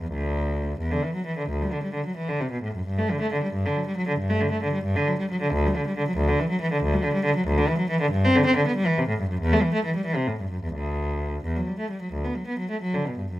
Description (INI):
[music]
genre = classical, baroque-style suite movement for unaccompanied cello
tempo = 74-94 BPM (dotted quarters)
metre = 12/8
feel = rubato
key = unclear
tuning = A4 = 436 Hz
[part]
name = rich cello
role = solo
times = 0.0-13.4 s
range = D2 to C4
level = -23 LUFS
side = equal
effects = none
[sound]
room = light reverb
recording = none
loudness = -23 LUFS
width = side -15 dB against mid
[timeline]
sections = 0.0-13.4 A section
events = none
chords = none